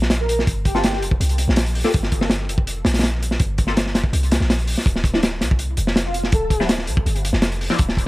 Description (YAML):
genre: drum and bass, jungle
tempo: 164 BPM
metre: 4/4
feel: straight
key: G minor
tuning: A4 = 440 Hz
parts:
  - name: warm 808-style bass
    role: bass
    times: 0.0-8.1 s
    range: D1 to C2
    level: -22 LUFS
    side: equal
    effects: none
  - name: crunchy breakbeat drum kit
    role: drums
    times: 0.0-8.1 s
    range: hi-hat, kick drum, snare drum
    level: -19 LUFS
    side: equal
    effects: none
  - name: breathy flute-like synth lead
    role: melody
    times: 0.2-1.0, 6.1-6.7 s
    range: F4 to Bb4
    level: -27 LUFS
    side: equal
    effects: ensemble chorus, vintage 12-bit sampler grit, dub echo
  - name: filtered dub chord stab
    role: stabs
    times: 0.7-7.8 s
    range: F3 to A4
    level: -26 LUFS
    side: left 2 dB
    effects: phaser, ensemble chorus, cassette tape, dub echo
room: studio reverb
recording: vinyl crackle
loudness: -17 LUFS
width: side -19 dB against mid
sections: 0.0-8.1 A section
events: none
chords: 0.0 Gm11; 4.9 Dm11